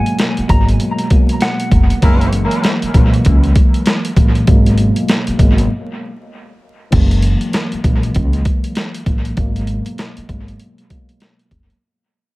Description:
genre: hip hop, boom-bap hip-hop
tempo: 98 BPM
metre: 4/4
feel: swing 62% on 16ths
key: G# minor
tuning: A4 = 440 Hz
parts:
  - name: semi-hollow electric guitar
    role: melody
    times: 0.0-1.7 s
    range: F#5 to A#5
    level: -24 LUFS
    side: equal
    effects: high-pass filter, low-pass filter, dub echo
  - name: mellow tine electric piano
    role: accompaniment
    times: 0.0-11.8 s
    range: B2 to A#3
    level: -20 LUFS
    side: equal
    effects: medium stereo tremolo, cassette tape, high-pass filter, low-pass filter, dub echo
  - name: boom bap sampler-style drum kit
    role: drums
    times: 0.1-11.8 s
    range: crash cymbal, hi-hat, kick drum, snare drum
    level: -14 LUFS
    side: equal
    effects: none
  - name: upright bass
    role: bass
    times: 0.4-11.7 s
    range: F#1 to C#2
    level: -16 LUFS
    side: equal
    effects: none
  - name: warm horn section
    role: stabs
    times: 2.0-2.3 s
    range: A#3 to A#4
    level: -23 LUFS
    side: equal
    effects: high-pass filter, low-pass filter, dub echo
room: little or no reverb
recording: echo-heavy mix, vinyl crackle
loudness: -12 LUFS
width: side -20 dB against mid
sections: 0.0-6.9 A section; 6.9-11.8 B section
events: break 5.7-6.9; fade-out 6.9-11.8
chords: 0.0 G#m9; 2.0 F#9; 4.5 G#m9; 6.9 F#9; 9.4 G#m9

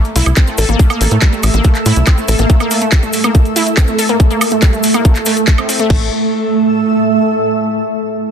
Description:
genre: psychedelic trance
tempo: 141 BPM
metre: 4/4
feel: straight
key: unclear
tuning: A4 = 439 Hz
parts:
  - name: cabasa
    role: percussion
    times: 0.0-5.9 s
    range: none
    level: -25 LUFS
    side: left 4 dB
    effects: none
  - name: granular cloud pad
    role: texture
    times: 0.2-7.6 s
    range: A3 to E6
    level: -16 LUFS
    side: right 2 dB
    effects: built-in reverb, sidechain pumping
  - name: drum and bass drum kit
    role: drums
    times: 0.1-6.0 s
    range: crash cymbal, handclaps, hi-hat, woodblock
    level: -18 LUFS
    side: right 1 dB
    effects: none
  - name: wide unison pluck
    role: riff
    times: 0.2-6.1 s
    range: G3 to A4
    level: -18 LUFS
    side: moving between left 4 dB and right 4 dB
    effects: auto-pan, vintage 12-bit sampler grit, sidechain pumping, tape echo
  - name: tight sequencer bass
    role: bass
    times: 0.2-2.5, 5.9-6.1 s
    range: A1 to A2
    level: -12 LUFS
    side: equal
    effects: none
  - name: electronic kick drum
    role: drums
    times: 0.4-6.0 s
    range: none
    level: -9 LUFS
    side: equal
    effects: none
room: moderate lush hall reverb, RT60 1.5 s, digital ambience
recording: dense, heavily limited modern master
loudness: -10 LUFS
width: side -7 dB against mid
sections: 0.0-5.9 A section; 5.9-7.6 B section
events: none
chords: 0.0 A5

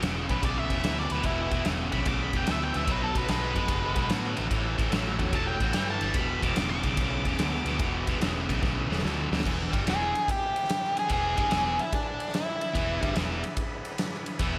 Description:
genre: blues rock power trio and southern rock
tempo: 146 BPM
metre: 4/4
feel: swing 67% on 8ths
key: E mixolydian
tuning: A4 = 440 Hz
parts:
  - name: overdriven tonewheel organ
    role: sustained chords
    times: 0.0-14.6 s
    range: G#3 to E5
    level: -43 LUFS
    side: equal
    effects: none
  - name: distorted electric guitar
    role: riff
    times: 0.0-14.6 s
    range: E2 to G#3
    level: -33 LUFS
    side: equal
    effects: distortion, slapback echo
  - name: vintage muted fingered electric bass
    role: bass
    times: 0.0-14.6 s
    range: E1 to A2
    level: -35 LUFS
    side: equal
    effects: none
  - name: big rock drum kit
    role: drums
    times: 0.0-14.5 s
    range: crash cymbal, kick drum, ride cymbal, snare drum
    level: -33 LUFS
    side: equal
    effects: none
  - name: octave-fuzz lead guitar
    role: melody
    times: 0.3-13.1 s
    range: D4 to D6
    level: -33 LUFS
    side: equal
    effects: distortion, slapback echo
room: moderate lush hall reverb, RT60 2.1 s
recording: big arena sound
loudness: -28 LUFS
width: mono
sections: 0.0-9.4 A section; 9.4-14.6 B section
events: lead electric guitar solo 0.0-9.4; drum fill 8.6-9.4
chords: 0.0 E7; 2.9 B7; 4.5 A7; 6.2 E7

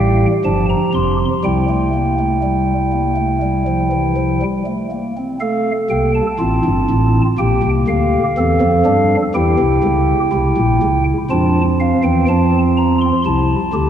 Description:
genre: classical, baroque-style 4-part fugue for pipe organ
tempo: 61 BPM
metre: 4/4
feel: straight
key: F major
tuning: A4 = 440 Hz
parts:
  - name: chamber organ, stopped flute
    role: solo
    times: 0.0-13.9 s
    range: F1 to C6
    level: -13 LUFS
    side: equal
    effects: none
room: wet church reverb, RT60 3.2 s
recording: dark, warm production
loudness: -13 LUFS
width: side -9 dB against mid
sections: 0.0-5.4 A section; 5.4-13.9 B section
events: none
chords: 0.0 Gm7; 1.4 C; 5.4 F; 7.4 Gm7/Bb; 9.4 Edim7; 11.3 F; 13.3 C

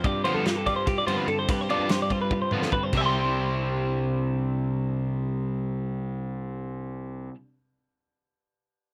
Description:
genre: math rock and midwest emo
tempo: 290 BPM (eighths)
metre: 7/8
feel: straight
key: C major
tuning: A4 = 440 Hz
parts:
  - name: twelve-string electric guitar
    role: accompaniment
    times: 0.0-7.5 s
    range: G2 to G4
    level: -36 LUFS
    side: equal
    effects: none
  - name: twelve-string electric guitar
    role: arpeggios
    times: 0.0-7.4 s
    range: F4 to C6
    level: -30 LUFS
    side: equal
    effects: plate reverb
  - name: fuzz picked electric bass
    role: bass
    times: 0.0-7.3 s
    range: C2 to G2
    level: -34 LUFS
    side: equal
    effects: overdrive
  - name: loose indie drum kit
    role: drums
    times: 0.0-3.0 s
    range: crash cymbal, kick drum, ride cymbal, snare drum, toms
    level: -33 LUFS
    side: equal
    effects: none
  - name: overdriven semi-hollow guitar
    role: riff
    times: 0.1-7.3 s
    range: C3 to G4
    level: -31 LUFS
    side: equal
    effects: none
room: moderate studio reverb, RT60 0.5 s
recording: rough home demo mix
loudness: -27 LUFS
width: mono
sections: 0.0-2.9 A section; 2.9-5.8 B section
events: drum fill 2.3-2.9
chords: 0.0 G7sus4; 2.9 Cadd9

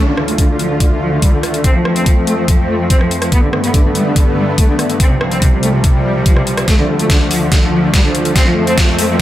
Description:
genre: heavy wobble dubstep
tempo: 143 BPM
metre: 4/4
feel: half-time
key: D dorian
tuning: A4 = 440 Hz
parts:
  - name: clear cello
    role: melody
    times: 0.0-9.2 s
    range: C3 to C4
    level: -18 LUFS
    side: equal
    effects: low-pass filter, tape echo
  - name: supersaw pad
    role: sustained chords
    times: 0.0-9.2 s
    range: C2 to F4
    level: -16 LUFS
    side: equal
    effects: lush chorus, sidechain pumping
  - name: dubstep drum kit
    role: drums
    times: 0.2-9.1 s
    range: hi-hat, rim click, snare drum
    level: -20 LUFS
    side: left 1 dB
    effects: overdrive, high-pass filter on hats, small room ambience, high-pass filter on snare
  - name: electronic kick drum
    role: drums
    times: 0.4-8.9 s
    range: none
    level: -12 LUFS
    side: equal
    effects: small room ambience
  - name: riser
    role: sound effects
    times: 8.5-9.2 s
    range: none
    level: -25 LUFS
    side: right 1 dB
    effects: none
room: moderate plate reverb, RT60 1.1 s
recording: dreamy mix soaked in reverb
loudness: -11 LUFS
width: side -13 dB against mid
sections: 0.0-9.2 A section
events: build-up 0.0-9.2; drum fill 6.7-9.2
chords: 0.0 Dm; 1.6 F; 3.3 Gadd9; 5.0 Csus4; 6.7 Dm; 8.4 F

